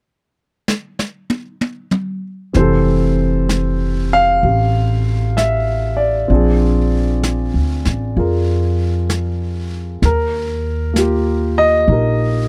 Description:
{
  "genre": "jazz ballad",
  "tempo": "64 BPM",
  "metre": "4/4",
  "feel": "swing 67% on 8ths",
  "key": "F major",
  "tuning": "A4 = 440 Hz",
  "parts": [
    { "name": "jazz brush drum kit", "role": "drums", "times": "0.7-12.5 s", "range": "brushed snare drum, hi-hat, snare drum, toms", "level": "-26 LUFS", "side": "equal", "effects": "none" },
    { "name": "warm grand piano", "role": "accompaniment", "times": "2.5-12.5 s", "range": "E3 to F5", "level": "-19 LUFS", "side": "equal", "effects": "none" },
    { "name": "upright bass", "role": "bass", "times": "2.5-12.5 s", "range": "F1 to F2", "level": "-19 LUFS", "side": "equal", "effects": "none" }
  ],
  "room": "little or no reverb",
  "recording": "dry, close 1970s-style studio recording",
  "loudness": "-17 LUFS",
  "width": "mono",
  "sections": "0.0-2.5 A section; 2.5-12.5 B section",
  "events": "drum fill 0.7-2.5",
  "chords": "0.0 N.C.; 2.5 Fmaj9; 6.3 Bb7; 10.0 Ebadd9"
}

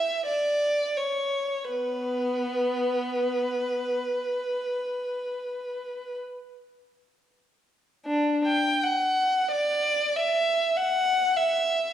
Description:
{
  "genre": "classical, free, expressive piece for unaccompanied violin",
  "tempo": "27-50 BPM",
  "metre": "4/4",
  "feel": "rubato",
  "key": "B minor",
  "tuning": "A4 = 442 Hz",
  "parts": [
    { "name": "rich violin", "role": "solo", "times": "0.0-11.9 s", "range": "B3 to G5", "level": "-24 LUFS", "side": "equal", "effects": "none" }
  ],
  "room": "wet recital hall reverb, RT60 1.6 s",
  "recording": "recorded in a church or concert hall",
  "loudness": "-24 LUFS",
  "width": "side -10 dB against mid",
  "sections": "0.0-8.1 A section; 8.1-11.9 B section",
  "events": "none",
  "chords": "none"
}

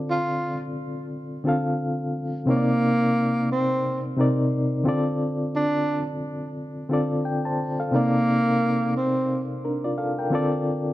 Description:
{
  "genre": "hip hop",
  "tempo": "88 BPM",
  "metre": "4/4",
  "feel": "swing 60% on 16ths",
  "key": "unclear",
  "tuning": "A4 = 440 Hz",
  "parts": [
    { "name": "reed electric piano", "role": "accompaniment", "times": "0.0-10.9 s", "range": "C3 to A5", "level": "-24 LUFS", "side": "left 1 dB", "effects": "fast tremolo, cassette tape, low-pass filter" },
    { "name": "breathy tenor saxophone", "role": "melody", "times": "0.1-9.5 s", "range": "Bb3 to F4", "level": "-24 LUFS", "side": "right 1 dB", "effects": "low-pass filter, analog delay" }
  ],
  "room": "wet small room reverb, RT60 0.6 s",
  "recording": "dark, warm production",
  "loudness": "-22 LUFS",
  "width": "side -15 dB against mid",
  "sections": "0.0-10.9 A section",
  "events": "none",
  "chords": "0.0 Dm7; 2.5 Cm9; 4.9 Dm7; 7.9 Cm9; 10.3 Dm7"
}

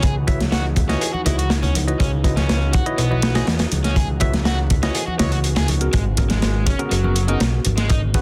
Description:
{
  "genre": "breakbeat, breaks",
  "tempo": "122 BPM",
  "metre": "4/4",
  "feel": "straight",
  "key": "unclear",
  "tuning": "A4 = 440 Hz",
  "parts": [
    { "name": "phased analog pad", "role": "sustained chords", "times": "0.0-8.2 s", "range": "C#3 to F#4", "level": "-33 LUFS", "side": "equal", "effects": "phaser, chorus, vintage 12-bit sampler grit, sidechain pumping" },
    { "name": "crunchy overdriven guitar", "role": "riff", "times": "0.0-8.0 s", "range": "F#3 to C#5", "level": "-30 LUFS", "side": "equal", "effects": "tube saturation, tape echo" },
    { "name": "fat analog bass", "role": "bass", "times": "0.0-8.2 s", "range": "F#1 to E2", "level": "-23 LUFS", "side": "equal", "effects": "tube saturation" },
    { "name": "crunchy breakbeat drum kit", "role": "drums", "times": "0.0-8.2 s", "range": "hi-hat, kick drum, snare drum", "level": "-23 LUFS", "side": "equal", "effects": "none" },
    { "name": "electronic hi-hat", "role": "drums", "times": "0.0-8.2 s", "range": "none", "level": "-30 LUFS", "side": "equal", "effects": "overdrive" },
    { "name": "tine electric piano", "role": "stabs", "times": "0.3-8.2 s", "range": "B3 to E5", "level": "-30 LUFS", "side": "equal", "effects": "overdrive, tape echo" },
    { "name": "congas and bongos", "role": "percussion", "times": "0.4-7.8 s", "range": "none", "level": "-30 LUFS", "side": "equal", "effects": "none" }
  ],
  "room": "studio ambience",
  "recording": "dense, heavily limited modern master",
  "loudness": "-19 LUFS",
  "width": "mono",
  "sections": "0.0-8.2 A section",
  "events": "none",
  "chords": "0.0 C#m11; 5.9 G#m11"
}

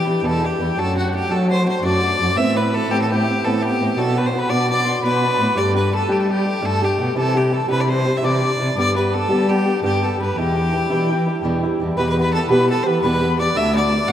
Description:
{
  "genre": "celtic folk, Celtic slip jig",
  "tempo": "113 BPM (dotted quarters)",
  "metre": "9/8",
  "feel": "straight",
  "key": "E minor",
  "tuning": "A4 = 440 Hz",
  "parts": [
    { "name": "clear fiddle", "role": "melody", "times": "0.0-14.1 s", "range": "F#4 to F#5", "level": "-22 LUFS", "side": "equal", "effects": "none" },
    { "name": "wooden whistle", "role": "second line", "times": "0.0-14.1 s", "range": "F#5 to E6", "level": "-26 LUFS", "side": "left 5 dB", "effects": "none" },
    { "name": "fingerpicked swing-style acoustic guitar", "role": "accompaniment", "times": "0.0-14.1 s", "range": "E2 to G4", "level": "-21 LUFS", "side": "right 1 dB", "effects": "none" },
    { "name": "dark cello", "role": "bass", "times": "0.0-14.1 s", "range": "D2 to G3", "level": "-21 LUFS", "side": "equal", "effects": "none" }
  ],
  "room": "wet cathedral reverb, RT60 5.0 s",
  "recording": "in a vast, echoing space",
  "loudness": "-16 LUFS",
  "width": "side -10 dB against mid",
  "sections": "0.0-12.0 A section; 12.0-14.1 B section",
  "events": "none",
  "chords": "0.0 Em7; 0.8 D/F#; 2.4 Amadd9; 4.0 Bm; 5.6 Gsus2; 7.2 Cadd9; 8.8 G; 10.4 Em7; 12.0 Em; 13.6 D"
}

